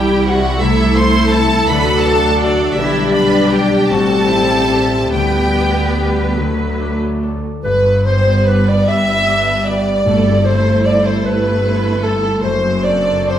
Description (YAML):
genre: classical, slow romantic movement for symphony orchestra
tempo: 44-56 BPM (dotted quarters)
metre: 6/8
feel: rubato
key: G major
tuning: A4 = 442 Hz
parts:
  - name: clear studio violin section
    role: melody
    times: 0.0-13.4 s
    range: A4 to C6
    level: -22 LUFS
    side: equal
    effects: none
  - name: rich studio violin section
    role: second line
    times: 0.0-13.4 s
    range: D4 to E5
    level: -21 LUFS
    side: equal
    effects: none
  - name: warm studio viola section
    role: accompaniment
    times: 0.0-13.4 s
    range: F#3 to E4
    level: -19 LUFS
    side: equal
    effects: none
  - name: mellow French horn section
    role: sustained chords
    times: 0.0-7.3 s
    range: G3 to G4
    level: -19 LUFS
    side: left 2 dB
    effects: none
  - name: concert harp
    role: arpeggios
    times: 0.0-13.4 s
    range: F#2 to E5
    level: -22 LUFS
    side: left 5 dB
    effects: none
  - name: clear studio double bass section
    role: bass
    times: 0.0-13.4 s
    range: F#1 to D2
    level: -19 LUFS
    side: right 1 dB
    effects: none
  - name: rich studio cello section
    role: bass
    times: 0.0-13.4 s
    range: F#2 to B4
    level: -22 LUFS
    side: right 1 dB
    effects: none
  - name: mellow clarinet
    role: second line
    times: 7.6-13.4 s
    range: A4 to E5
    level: -17 LUFS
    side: equal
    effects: none
  - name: timpani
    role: percussion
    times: 10.1-11.2 s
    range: G2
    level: -22 LUFS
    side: right 1 dB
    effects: none
room: wet stone room reverb, RT60 1.0 s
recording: none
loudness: -12 LUFS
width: side -10 dB against mid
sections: 0.0-7.6 A section; 7.6-13.4 B section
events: none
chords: 0.0 C; 0.6 Am/C; 1.7 D; 2.8 G/B; 3.9 Am7; 5.1 G/D; 6.4 D; 7.6 G; 10.1 Am7/G; 12.4 D7/F#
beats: | 0.61 1.70 | 2.78 3.90 | 5.14 6.37 | 7.63 8.87 | 10.06 11.24 | 12.42